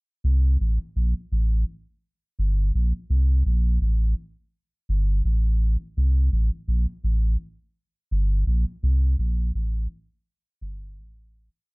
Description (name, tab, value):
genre	reggae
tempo	84 BPM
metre	4/4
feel	swing 56% on 16ths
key	unclear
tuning	A4 = 441 Hz
part	warm sub bass	solo	0.2-11.5 s	G1 to C2	-21 LUFS	equal	none
room	light reverb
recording	dry, close 1970s-style studio recording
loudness	-21 LUFS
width	side -38 dB against mid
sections	0.2-11.7 verse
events	fade-out 8.8-11.7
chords	none